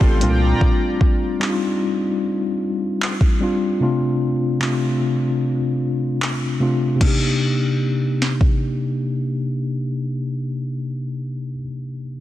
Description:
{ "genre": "contemporary R&B", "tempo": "75 BPM", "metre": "4/4", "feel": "straight", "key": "C dorian", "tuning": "A4 = 442 Hz", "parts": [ { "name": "mellow tine electric piano", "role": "accompaniment", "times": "0.0-12.2 s", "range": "C3 to A4", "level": "-20 LUFS", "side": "left 1 dB", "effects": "medium stereo tremolo" }, { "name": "chorused pulse-width pad", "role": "sustained chords", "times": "0.0-0.6 s", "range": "F4 to C6", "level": "-28 LUFS", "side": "equal", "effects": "none" }, { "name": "fingerpicked steel-string acoustic guitar", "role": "arpeggios", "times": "0.0-1.2 s", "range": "Bb2 to D4", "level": "-26 LUFS", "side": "right 4 dB", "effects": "tape echo" }, { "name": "saturated sub bass", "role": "bass", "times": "0.0-0.5 s", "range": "A1 to C2", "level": "-18 LUFS", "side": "equal", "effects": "none" }, { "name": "smooth R&B drum kit", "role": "drums", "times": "0.0-8.6 s", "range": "crash cymbal, handclaps, hi-hat, kick drum, snare drum", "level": "-20 LUFS", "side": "equal", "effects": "overdrive, vintage 12-bit sampler grit" } ], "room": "light reverb, digital ambience", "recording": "dense, heavily limited modern master", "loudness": "-18 LUFS", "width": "side -14 dB against mid", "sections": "0.0-7.0 A section; 7.0-10.2 B section", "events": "none", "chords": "0.2 Bb6/C; 3.8 Dm7/C; 7.0 Cm7" }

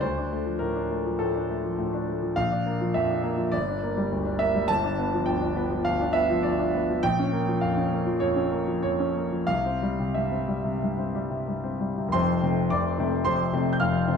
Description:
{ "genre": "classical, romantic character piece for solo piano", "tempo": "86-111 BPM", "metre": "4/4", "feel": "rubato", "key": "F major", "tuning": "A4 = 440 Hz", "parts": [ { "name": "clear concert grand piano", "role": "solo", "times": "0.0-14.2 s", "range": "F1 to G6", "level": "-23 LUFS", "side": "equal", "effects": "none" } ], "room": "wet large studio reverb, RT60 1.1 s", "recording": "heard from further back in the room", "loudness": "-23 LUFS", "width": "side -6 dB against mid", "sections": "0.0-12.1 A section; 12.1-14.2 B section", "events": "none", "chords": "0.0 Dm; 2.4 Bb; 3.5 Gm; 4.7 G7; 7.0 Bbm; 9.5 C; 12.1 F" }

